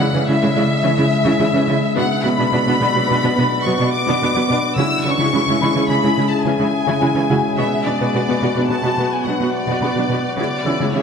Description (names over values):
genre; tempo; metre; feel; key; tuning
cinematic; 107 BPM; 5/4; straight; B dorian; A4 = 442 Hz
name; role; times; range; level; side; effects
warm symphonic violin section; melody; 0.0-11.0 s; C#5 to E6; -21 LUFS; left 3 dB; none
rich symphonic viola section; accompaniment; 0.0-11.0 s; E3 to F#4; -22 LUFS; right 1 dB; none
metallic inharmonic drone; sustained chords; 0.0-11.0 s; C#3 to E5; -21 LUFS; left 2 dB; chorus, built-in reverb
soft round pluck; arpeggios; 0.0-11.0 s; C#3 to B4; -26 LUFS; left 1 dB; none
rich symphonic cello section; bass; 0.0-11.0 s; B2 to C#3; -22 LUFS; right 2 dB; none
felt-muted upright piano; texture; 0.0-11.0 s; E4 to E6; -31 LUFS; left 2 dB; none
room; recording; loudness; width
wet scoring stage reverb, RT60 1.7 s; none; -15 LUFS; side -6 dB against mid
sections
0.0-11.0 A section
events
none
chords
0.0 C#m; 2.0 Bm; 4.8 C#m; 7.6 Bm; 10.4 C#m